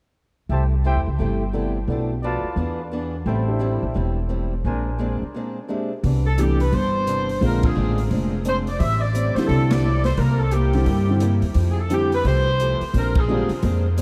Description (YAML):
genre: jazz, big band swing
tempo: 174 BPM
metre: 4/4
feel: swing 62% on 8ths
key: C major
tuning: A4 = 440 Hz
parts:
  - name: picked acoustic archtop guitar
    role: accompaniment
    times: 0.5-14.0 s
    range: A2 to G#4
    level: -30 LUFS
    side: equal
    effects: none
  - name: warm trumpet section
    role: stabs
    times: 0.5-5.2 s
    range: D4 to A5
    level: -33 LUFS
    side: equal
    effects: delay
  - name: upright bass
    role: bass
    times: 0.5-14.0 s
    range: E1 to G2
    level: -24 LUFS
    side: equal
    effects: none
  - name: warm concert grand piano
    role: accompaniment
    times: 1.5-13.5 s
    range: D3 to E5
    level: -30 LUFS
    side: equal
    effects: none
  - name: swinging big-band drum kit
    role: drums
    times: 6.0-14.0 s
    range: hi-hat, kick drum, ride cymbal, snare drum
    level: -29 LUFS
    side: equal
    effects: none
  - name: bright saxophone section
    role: melody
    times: 6.3-13.5 s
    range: G4 to E5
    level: -27 LUFS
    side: equal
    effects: delay
room: light reverb, studio reverb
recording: none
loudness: -21 LUFS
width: mono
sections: 0.5-6.0 A section; 6.0-14.0 B section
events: break 5.3-6.0; band accent 7.6, 9.7, 13.1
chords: 0.5 C6; 1.9 Bm7b5; 2.6 E7; 3.3 Am7; 4.7 Bb9; 6.0 Cmaj9; 7.4 Bb9; 8.8 Am7; 10.2 C7; 11.6 Fmaj9; 12.9 Bb9